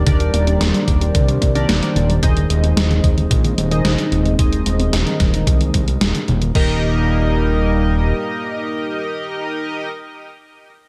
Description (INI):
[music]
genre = synthwave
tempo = 111 BPM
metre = 4/4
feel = straight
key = Eb major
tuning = A4 = 440 Hz
[part]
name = chorused pulse-width pad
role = sustained chords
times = 0.0-9.9 s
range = G3 to Eb5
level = -26 LUFS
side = equal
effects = sidechain pumping
[part]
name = unison pluck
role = arpeggios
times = 0.0-6.8 s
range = C3 to D4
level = -26 LUFS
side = equal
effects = none
[part]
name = chorused polysynth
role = stabs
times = 0.0-9.9 s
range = Eb3 to Eb5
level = -25 LUFS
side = equal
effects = delay
[part]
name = fat analog bass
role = bass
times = 0.0-8.1 s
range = Eb1 to C2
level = -20 LUFS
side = equal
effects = tube saturation, sidechain pumping
[part]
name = electronic kick drum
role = drums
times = 0.1-6.7 s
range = none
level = -20 LUFS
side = equal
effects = none
[part]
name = gated 80s digital drum machine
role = drums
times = 0.1-6.7 s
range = crash cymbal, hi-hat, snare drum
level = -25 LUFS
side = equal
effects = gated reverb, gated reverb snare
[sound]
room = light reverb, digital ambience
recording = none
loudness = -17 LUFS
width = mono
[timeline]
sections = 0.0-6.6 A section; 6.6-10.9 B section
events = filter sweep on analog polysynth 0.0-6.6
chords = 0.0 Gm/Eb; 2.2 Ab/Eb; 6.6 Eb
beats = | 0.07 0.61 1.15 1.69 | 2.23 2.77 3.31 3.85 | 4.39 4.93 5.47 6.01 | 6.55 7.09 7.63 8.17 | 8.71 9.26 9.80